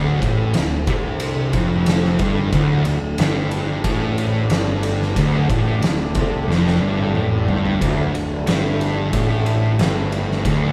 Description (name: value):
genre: stoner and doom metal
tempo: 91 BPM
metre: 4/4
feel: straight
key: D minor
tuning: A4 = 439 Hz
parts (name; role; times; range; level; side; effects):
- analog drone; sustained chords; 0.1-10.7 s; D3 to D4; -30 LUFS; equal; chorus
- thick fuzz guitar; riff; 0.0-10.7 s; D2 to C3; -24 LUFS; equal; distortion
- thick fuzz guitar; riff; 0.0-10.7 s; D2 to C3; -26 LUFS; equal; distortion
- fuzz picked electric bass; bass; 0.0-10.7 s; D1 to C2; -28 LUFS; equal; overdrive
- oversized low-tuned drum kit; drums; 0.2-10.6 s; kick drum, ride cymbal, snare drum, toms; -24 LUFS; equal; none
room: light reverb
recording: band playing live in one room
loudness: -19 LUFS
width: mono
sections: 0.0-10.7 A section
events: drum fill 6.5-7.8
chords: 0.0 Dm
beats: 0.55 1.21 1.87 | 2.53 3.19 3.85 4.51 | 5.17 5.83 6.49 7.15 | 7.81 8.47 9.13 9.79 | 10.45